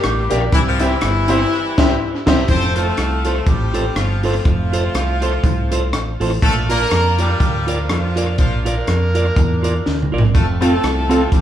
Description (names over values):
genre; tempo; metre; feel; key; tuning
ska; 122 BPM; 4/4; swing 56% on 8ths; F major; A4 = 440 Hz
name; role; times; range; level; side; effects
clear horn section; melody; 0.0-11.4 s; E3 to C5; -21 LUFS; equal; tape echo
clean electric guitar; accompaniment; 0.0-11.2 s; C4 to D5; -23 LUFS; right 2 dB; none
fingered electric bass; bass; 0.0-11.4 s; F1 to F2; -20 LUFS; equal; none
compact cocktail drum kit; drums; 0.0-11.4 s; crash cymbal, hi-hat, kick drum, rim click, snare drum, toms; -19 LUFS; equal; tape echo
bright upright piano; stabs; 0.3-2.4, 10.6-11.2 s; Bb3 to A4; -21 LUFS; left 3 dB; none
room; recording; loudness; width
wet large studio reverb, RT60 1.2 s; band playing live in one room, vinyl crackle; -14 LUFS; side -11 dB against mid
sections
0.0-2.5 A section; 2.5-11.4 B section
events
band accent 1.5-2.5; drum fill 9.9-10.3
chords
0.0 Gm; 0.5 C; 2.5 F; 6.4 Bb; 10.3 F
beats
0.03 | 0.53 1.02 1.51 2.00 | 2.49 2.98 3.47 3.97 | 4.46 4.95 5.44 5.93 | 6.42 6.91 7.40 7.89 | 8.38 8.88 9.37 9.86 | 10.35 10.84 11.33